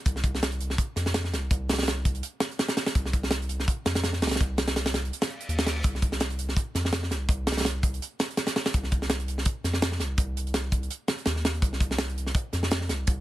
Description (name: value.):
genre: drum and bass, jungle.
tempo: 166 BPM.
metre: 4/4.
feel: swing 54% on 16ths.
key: C minor.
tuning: A4 = 442 Hz.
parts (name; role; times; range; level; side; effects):
soft dub sub bass; bass; 0.1-13.2 s; C2 to F2; -30 LUFS; equal; none.
tight funk drum kit; drums; 0.1-13.2 s; hi-hat, kick drum, snare drum; -26 LUFS; equal; none.
reverse cymbal; sound effects; 5.3-5.8 s; none; -39 LUFS; left 1 dB; none.
room: little or no reverb.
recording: lossy compression artefacts.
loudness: -25 LUFS.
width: side -15 dB against mid.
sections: 0.0-13.2 A section.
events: reverse cymbal 5.3-5.8.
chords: none.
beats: | 0.06 0.42 0.78 1.15 | 1.51 1.87 2.23 2.59 | 2.95 3.31 3.68 4.04 | 4.40 4.76 5.12 5.48 | 5.84 6.21 6.57 6.93 | 7.29 7.65 8.01 8.37 | 8.74 9.10 9.46 9.82 | 10.18 10.54 10.90 11.27 | 11.63 11.99 12.35 12.71 | 13.07.